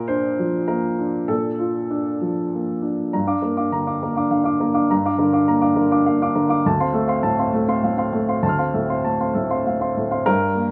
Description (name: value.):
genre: neoclassical minimalist piano.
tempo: 96-105 BPM.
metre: 3/4.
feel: rubato.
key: G minor.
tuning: A4 = 440 Hz.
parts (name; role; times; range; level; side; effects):
warm upright piano; solo; 0.0-10.7 s; D2 to F6; -21 LUFS; equal; none.
room: moderate small room reverb, RT60 0.5 s.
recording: none.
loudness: -21 LUFS.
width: mono.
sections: 0.0-3.1 A section; 3.1-10.3 B section.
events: none.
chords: 0.0 Bbmaj7; 3.1 Gm7 (rootless); 6.6 Dm7 (rootless).